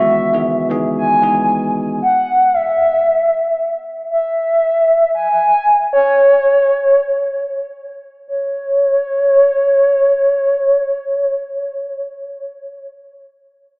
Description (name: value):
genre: amapiano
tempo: free time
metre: none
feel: none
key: C# minor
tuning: A4 = 440 Hz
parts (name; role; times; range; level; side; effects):
- hollow clarinet-like synth lead; melody; 0.0-12.9 s; C#5 to G#5; -13 LUFS; equal; chorus, tape echo
- bell-like tine electric piano; accompaniment; 0.0-2.0 s; C#2 to G#4; -19 LUFS; equal; fast stereo tremolo
room: wet plate reverb, RT60 2.8 s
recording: dreamy mix soaked in reverb, AM radio sound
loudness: -12 LUFS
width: side -33 dB against mid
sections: 0.0-8.3 A section; 8.3-12.4 B section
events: none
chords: 0.0 C#m11; 4.1 N.C.